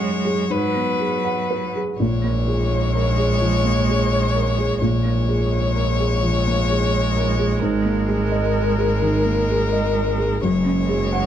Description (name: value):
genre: neoclassical piano and strings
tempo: 85 BPM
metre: 4/4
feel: rubato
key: unclear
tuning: A4 = 437 Hz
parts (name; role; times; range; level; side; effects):
- clear violin; melody; 0.0-11.3 s; A#4 to C#5; -24 LUFS; left 6 dB; none
- rich cello; second line; 0.0-11.3 s; F#3 to G#3; -26 LUFS; right 7 dB; none
- felt-muted upright piano; accompaniment; 0.0-11.3 s; F#2 to F#5; -23 LUFS; right 1 dB; none
- clear double bass; bass; 2.0-11.3 s; F#1 to A#1; -22 LUFS; equal; none
room: little or no reverb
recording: dark, warm production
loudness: -18 LUFS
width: side -10 dB against mid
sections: 0.0-2.0 A section; 2.0-11.3 A section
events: none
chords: 0.0 F#sus2; 0.5 G#m7; 2.0 A#m7; 7.6 G#sus2; 10.4 F#sus2